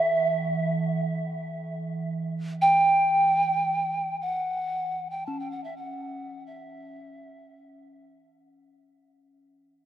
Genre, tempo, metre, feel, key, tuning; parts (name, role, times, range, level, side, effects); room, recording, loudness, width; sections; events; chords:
world meditative, free-time meditation music; free time; E dorian; A4 = 440 Hz
mellow hollow polished pan flute; melody; 0.0-8.2 s; E5 to A5; -24 LUFS; right 1 dB; diffuse ambient delay
bronze singing bowl; texture; 0.0-9.2 s; E3 to C#4; -34 LUFS; right 3 dB
wet huge ambient reverb, RT60 7.7 s; dark, warm production; -23 LUFS; side -11 dB against mid
0.0-8.8 A section
fade-out 0.0-8.8